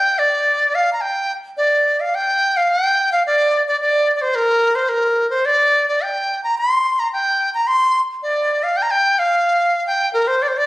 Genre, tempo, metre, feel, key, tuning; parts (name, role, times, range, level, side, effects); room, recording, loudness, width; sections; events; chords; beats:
chinese traditional; 108 BPM; 2/4; rubato; G yu mode; A4 = 438 Hz
bright reedy large dizi; solo; 0.0-10.7 s; Bb4 to C6; -15 LUFS; equal
moderate recital hall reverb, RT60 1.3 s; recorded on a phone in the room, club reverb, compression; -15 LUFS; side -18 dB against mid
0.0-2.1 A section; 2.1-10.7 B section
0.44 | 1.00 1.55 | 2.11 2.67 | 3.22 3.77 | 4.32 4.87 | 5.42 5.98 | 6.54 7.10 | 7.65 8.20 | 8.74 9.29 | 9.84 10.40